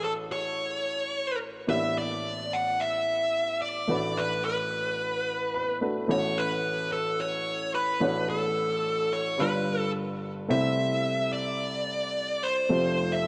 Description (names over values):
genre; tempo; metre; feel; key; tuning
pop; 109 BPM; 4/4; straight; unclear; A4 = 440 Hz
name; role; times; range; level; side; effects
dark smooth lead guitar; melody; 0.0-13.3 s; A4 to F#5; -30 LUFS; equal; overdrive
warm baby grand piano; accompaniment; 0.0-13.3 s; F1 to B5; -33 LUFS; equal; none
room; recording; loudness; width
moderate lush hall reverb, RT60 2.6 s; none; -28 LUFS; mono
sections
0.0-10.5 A section; 10.5-13.3 B section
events
grand piano fill 5.3-6.1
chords
0.0 Dmaj7/A; 1.7 G/A; 3.9 Bm7/A; 6.1 F#m/A; 8.0 Dmaj7/A; 9.4 G7; 10.5 C6; 12.7 Fadd9